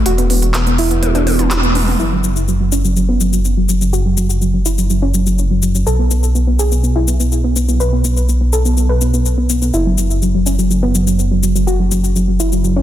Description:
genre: progressive house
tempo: 124 BPM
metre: 4/4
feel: straight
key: unclear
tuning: A4 = 439 Hz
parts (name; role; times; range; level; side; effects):
- dark detuned saw bass; bass; 0.0-12.8 s; E1 to B1; -15 LUFS; equal; tube saturation
- soft round pluck; arpeggios; 0.1-12.8 s; F#3 to B4; -17 LUFS; right 1 dB; wide subtle chorus, tape echo
- big-room dance drum kit; drums; 0.1-12.7 s; handclaps, hi-hat, shaker, toms; -22 LUFS; left 2 dB; overdrive
room: light reverb, digital ambience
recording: dense, heavily limited modern master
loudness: -12 LUFS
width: side -12 dB against mid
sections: 0.0-2.0 A section; 2.0-12.8 B section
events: filter sweep on synth pluck 0.0-2.0; drum fill 1.0-2.0; band accent 1.5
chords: 0.1 E5; 2.0 N.C.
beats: | 0.06 0.54 1.03 1.51 | 1.99 2.48 2.96 3.45 | 3.93 4.41 4.90 5.38 | 5.87 6.35 6.83 7.32 | 7.80 8.29 8.77 9.25 | 9.74 10.22 10.70 11.19 | 11.67 12.16 12.64

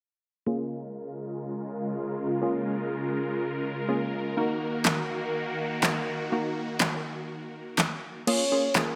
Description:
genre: dance-pop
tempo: 123 BPM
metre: 4/4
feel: straight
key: Bb minor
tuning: A4 = 441 Hz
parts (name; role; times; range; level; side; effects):
- wavetable chord stab; accompaniment; 0.5-8.9 s; Bb3 to Bb4; -32 LUFS; equal; low-pass filter
- supersaw chords; sustained chords; 0.5-8.2 s; Db3 to Bb4; -33 LUFS; equal; phaser, low-pass filter
- pop drum kit; drums; 4.8-8.9 s; crash cymbal, handclaps, snare drum; -28 LUFS; equal; none
- soft octave-layered synth lead; melody; 8.3-9.0 s; Bb4 to Db5; -29 LUFS; equal; chorus, tremolo
room: moderate lush hall reverb, RT60 1.7 s, digital ambience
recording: none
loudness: -29 LUFS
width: mono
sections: 0.5-8.3 A section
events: filter sweep 0.5-8.3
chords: 0.5 Bbm7; 4.4 Ebm; 8.3 Bbm7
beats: | 0.47 0.96 1.45 1.93 | 2.42 2.91 3.40 3.88 | 4.37 4.86 5.35 5.84 | 6.32 6.81 7.30 7.79 | 8.28 8.76

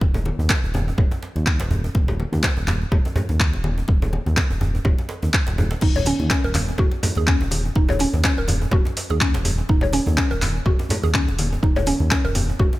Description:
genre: afro house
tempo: 124 BPM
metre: 4/4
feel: swing 56% on 16ths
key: Eb minor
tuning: A4 = 441 Hz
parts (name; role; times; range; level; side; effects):
- smooth synth bass; bass; 0.0-12.7 s; Eb1 to Eb2; -23 LUFS; equal; tube saturation, sidechain pumping
- electronic kick drum; drums; 0.0-12.7 s; none; -20 LUFS; equal; small room reverb
- congas; percussion; 0.0-12.8 s; none; -29 LUFS; left 1 dB; none
- djembe; percussion; 0.2-12.8 s; none; -27 LUFS; right 1 dB; none
- deep house drum kit; drums; 0.5-12.5 s; crash cymbal, handclaps, hi-hat; -25 LUFS; equal; small room reverb
- mallet-like synth pluck; arpeggios; 5.8-12.7 s; Db4 to Db5; -25 LUFS; equal; chorus, sidechain pumping, tape echo
room: little or no reverb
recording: none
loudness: -18 LUFS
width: side -17 dB against mid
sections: 0.0-12.8 A section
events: none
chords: 0.0 N.C.; 5.8 Eb7(no3)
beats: | 0.01 0.50 0.98 1.47 | 1.95 2.44 2.92 3.40 | 3.89 4.37 4.85 5.34 | 5.82 6.31 6.79 7.27 | 7.76 8.24 8.72 9.21 | 9.69 10.18 10.66 11.14 | 11.63 12.11 12.60

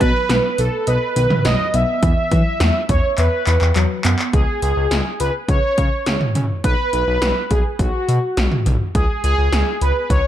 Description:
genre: synth-pop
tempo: 104 BPM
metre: 4/4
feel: straight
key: unclear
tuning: A4 = 440 Hz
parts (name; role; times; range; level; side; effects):
- analog synth brass; melody; 0.0-10.3 s; F#4 to E5; -20 LUFS; right 1 dB; chorus, analog delay
- soft round pluck; arpeggios; 0.0-4.3 s; D#3 to E5; -26 LUFS; left 1 dB; chorus
- smooth synth bass; bass; 0.0-10.2 s; B1 to E3; -19 LUFS; equal; none
- 80s electronic pad drums; drums; 0.0-10.2 s; cowbell, handclaps, hi-hat, kick drum, snare drum, toms; -19 LUFS; equal; gated reverb on snare and toms
room: light reverb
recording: dark, warm production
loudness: -15 LUFS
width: side -11 dB against mid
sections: 0.0-4.3 A section; 4.3-10.3 B section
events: drum fill 3.2-4.3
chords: 0.0 B; 2.0 Esus2; 4.3 C#5; 6.6 B5; 8.9 C#5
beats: 0.30 0.87 1.45 | 2.03 2.60 3.18 3.76 | 4.33 4.91 5.49 6.07 | 6.64 7.22 7.80 8.37 | 8.95 9.53 10.10

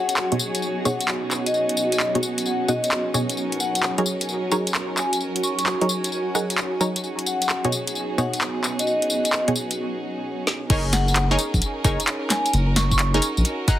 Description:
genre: UK garage, two-step garage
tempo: 131 BPM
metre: 4/4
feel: swing 66% on 16ths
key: F# major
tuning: A4 = 440 Hz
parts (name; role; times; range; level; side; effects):
- vibraphone with medium mallets; melody; 0.0-13.2 s; D#5 to C#6; -27 LUFS; left 1 dB; dub echo
- dark studio violin section; sustained chords; 0.0-13.8 s; C#4 to A#4; -31 LUFS; right 1 dB; sidechain pumping, low-pass filter
- granular cloud pad; texture; 0.0-9.8 s; B3 to G#5; -28 LUFS; right 1 dB; built-in reverb, sidechain pumping
- garage drum kit; drums; 0.1-13.8 s; crash cymbal, handclaps, hi-hat, snare drum, tambourine; -24 LUFS; left 1 dB; none
- punchy chord stab; stabs; 0.3-13.8 s; B2 to F#5; -25 LUFS; equal; chorus, dub echo
- saturated sub bass; bass; 10.7-13.4 s; F#1 to A#1; -21 LUFS; equal; none
- electronic kick drum; drums; 10.7-13.8 s; none; -22 LUFS; equal; none
room: wet studio reverb, RT60 0.7 s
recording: heavily compressed radio sound, multiband compression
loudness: -20 LUFS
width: side -12 dB against mid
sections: 0.0-10.7 A section; 10.7-13.8 B section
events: filter sweep on synth stab 0.0-10.7; break 9.8-10.7; drum fill 10.5; drop 10.7-13.8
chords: 0.0 B69; 3.4 F#69; 7.0 B69; 10.7 F#69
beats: 0.17 0.62 1.08 | 1.54 2.00 2.46 2.92 | 3.37 3.83 4.29 4.75 | 5.21 5.66 6.12 6.58 | 7.04 7.50 7.95 8.41 | 8.87 9.33 9.79 10.24 | 10.70 11.16 11.62 12.07 | 12.53 12.99 13.45

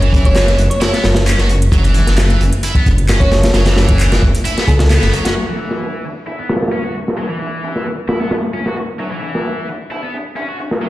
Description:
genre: breakbeat, breaks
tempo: 132 BPM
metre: 4/4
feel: straight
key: unclear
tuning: A4 = 440 Hz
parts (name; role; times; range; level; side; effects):
- heavy high-gain guitar; riff; 0.0-10.9 s; E3 to F#4; -22 LUFS; equal; distortion, tube saturation, low-pass filter, digital delay
- detuned saw bass; bass; 0.0-5.1 s; F#1 to C#2; -13 LUFS; equal; none
- house drum kit; drums; 0.0-5.3 s; handclaps, hi-hat; -26 LUFS; equal; overdrive
- crunchy breakbeat drum kit; drums; 0.1-10.9 s; hi-hat, kick drum, snare drum; -16 LUFS; equal; low-pass filter on kick, low-pass filter on hats, low-pass filter on snare, low-pass filter on room
- thumb-piano-like synth pluck; melody; 0.3-5.4 s; F#4 to C#5; -22 LUFS; equal; chorus, old record sound, digital delay
room: small room reverb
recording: played on a big sound system in a bare room, large studio reverb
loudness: -12 LUFS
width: side -16 dB against mid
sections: 0.0-5.4 A section; 5.4-10.9 B section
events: band accent 4.9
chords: 0.0 F#5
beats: 0.36 0.82 1.27 | 1.73 2.18 2.63 3.09 | 3.54 4.00 4.45 4.91 | 5.36 5.82 6.27 6.73 | 7.18 7.63 8.09 8.54 | 9.00 9.45 9.91 10.36 | 10.82

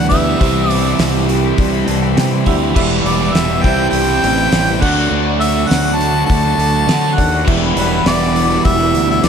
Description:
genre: classic rock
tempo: 102 BPM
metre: 4/4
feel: straight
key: unclear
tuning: A4 = 440 Hz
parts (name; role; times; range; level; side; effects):
- clear harmonica; melody; 0.0-9.3 s; B4 to A5; -18 LUFS; equal; slapback echo, tape echo
- cranked stack guitar; riff; 0.0-9.3 s; C3 to E4; -21 LUFS; equal; overdrive, slapback echo
- crunchy overdriven guitar; riff; 0.0-9.3 s; E2 to F#4; -19 LUFS; right 10 dB; phaser, slapback echo
- overdriven semi-hollow guitar; riff; 0.0-9.3 s; E2 to F#4; -21 LUFS; left 11 dB; slapback echo
- fuzz fingered electric bass; bass; 0.0-9.3 s; E1 to D3; -19 LUFS; left 1 dB; overdrive
- bright upright piano; accompaniment; 0.1-8.4 s; D4 to A5; -25 LUFS; right 6 dB; slapback echo
- damped 70s drum kit; drums; 0.1-9.3 s; crash cymbal, hi-hat, kick drum, snare drum; -19 LUFS; equal; none
room: light reverb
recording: none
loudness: -12 LUFS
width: side -7 dB against mid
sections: 0.0-9.3 A section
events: upright piano fill 1.6-2.8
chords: 0.4 C; 2.8 Em; 3.6 C; 4.8 D; 7.5 Em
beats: | 0.41 1.00 1.59 2.17 | 2.76 3.35 3.94 4.53 | 5.12 5.71 6.29 6.88 | 7.47 8.06 8.65 9.24

